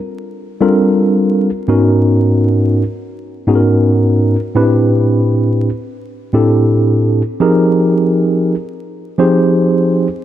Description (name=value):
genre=hip hop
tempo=84 BPM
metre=4/4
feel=swing 64% on 16ths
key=unclear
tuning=A4 = 440 Hz
part: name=mellow tine electric piano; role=solo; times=0.6-10.1 s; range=Ab2 to C5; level=-11 LUFS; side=equal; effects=medium stereo tremolo
room=light reverb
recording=vinyl crackle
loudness=-11 LUFS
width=side -12 dB against mid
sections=0.0-10.2 A section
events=none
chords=0.0 Gm11; 1.7 Abm11; 4.5 Am11; 7.4 Fm11